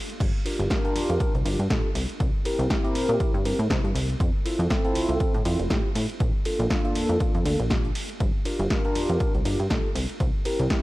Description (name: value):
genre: filtered disco house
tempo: 120 BPM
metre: 4/4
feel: swing 56% on 16ths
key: G dorian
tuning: A4 = 441 Hz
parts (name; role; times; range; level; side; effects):
- punchy analog drum machine; drums; 0.1-10.8 s; crash cymbal, hi-hat, ride cymbal, snare drum; -32 LUFS; equal; sidechain pumping on hats, sidechain pumping on cymbals
- plucky analog bass; bass; 0.2-10.7 s; F1 to C3; -27 LUFS; equal; sidechain pumping
- electronic kick drum; drums; 0.2-10.8 s; none; -26 LUFS; equal; none
- mellow tine electric piano; accompaniment; 0.5-10.8 s; Bb3 to Bb4; -28 LUFS; equal; phaser, sidechain pumping
room: light reverb, digital ambience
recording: none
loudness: -22 LUFS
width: side -18 dB against mid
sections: 0.0-10.8 A section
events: none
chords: 0.2 Gm7; 2.0 C7; 4.2 Fmaj7; 6.2 Bbmaj7; 8.2 Gm7; 10.0 C7